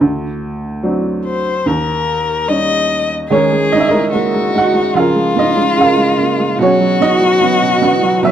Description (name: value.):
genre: acoustic folk-pop ballad.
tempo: 73 BPM.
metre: 4/4.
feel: straight.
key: G# minor from 3.3 s.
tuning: A4 = 440 Hz.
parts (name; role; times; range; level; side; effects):
clear upright piano; melody; 0.0-8.3 s; D2 to F#5; -14 LUFS; right 1 dB; plate reverb.
clear violin; second line; 1.3-8.3 s; E#4 to Eb5; -16 LUFS; left 4 dB; none.
felt-muted upright piano; arpeggios; 3.3-8.3 s; D#3 to G#4; -19 LUFS; right 8 dB; none.
room: moderate large studio reverb, RT60 0.9 s.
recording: none.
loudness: -11 LUFS.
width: side -10 dB against mid.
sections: 0.0-3.3 A section; 3.3-8.3 B section.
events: violin solo 0.0-3.3.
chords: 0.0 D7; 1.7 Eb7; 3.3 G#sus2; 5.0 C#6; 6.6 G#m7/B.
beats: | 0.02 0.85 1.67 2.49 | 3.31 4.14 4.96 5.78 | 6.60 7.42 8.24.